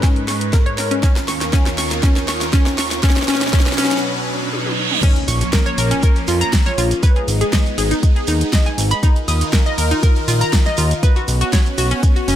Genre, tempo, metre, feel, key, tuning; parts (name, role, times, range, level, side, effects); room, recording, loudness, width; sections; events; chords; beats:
progressive house; 120 BPM; 4/4; straight; Eb minor; A4 = 440 Hz
supersaw pad; sustained chords; 0.0-12.4 s; Eb2 to Cb5; -24 LUFS; equal; phaser, sidechain pumping
analog pluck; arpeggios; 0.0-12.4 s; Db4 to Eb6; -21 LUFS; left 1 dB; chorus, sidechain pumping, dub echo
deep house drum kit; drums; 0.0-12.4 s; crash cymbal, hi-hat, snare drum, toms; -23 LUFS; equal; overdrive, high-pass filter on snare, high-pass filter on hats, high-pass filter on toms, high-pass filter on cymbals
electronic kick drum; drums; 0.0-12.1 s; -14 LUFS; equal
riser, reverse cymbal and impact; sound effects; 1.4-7.0 s; -27 LUFS; right 3 dB
breakbeat sampler-style drum kit; drums; 5.0-12.4 s; hi-hat, snare drum, tambourine; -32 LUFS; left 1 dB
shekere; percussion; 5.0-12.4 s; -30 LUFS; right 5 dB
fat analog bass; bass; 5.3-12.4 s; F#1 to F2; -17 LUFS; equal; sidechain pumping
light reverb; -14 LUFS; side -11 dB against mid
0.0-5.0 A section; 5.0-12.4 B section
build-up 0.0-5.0; drum fill 0.0-4.0, 4.5-5.0; filter sweep on supersaw synth 0.0-5.0; break 4.0-5.0; reverse cymbal 4.0-5.0; drop 5.0-12.4; impact 5.0-7.0
0.0 Abm; 1.0 Ebsus2; 3.0 Bsus2; 5.0 Bbm; 7.0 Abm; 9.0 Ebsus2; 11.0 Bsus2
0.03 0.53 | 1.03 1.53 2.03 2.53 | 3.03 3.53 4.03 4.53 | 5.03 5.53 6.03 6.53 | 7.03 7.53 8.03 8.53 | 9.03 9.53 10.03 10.53 | 11.03 11.53 12.03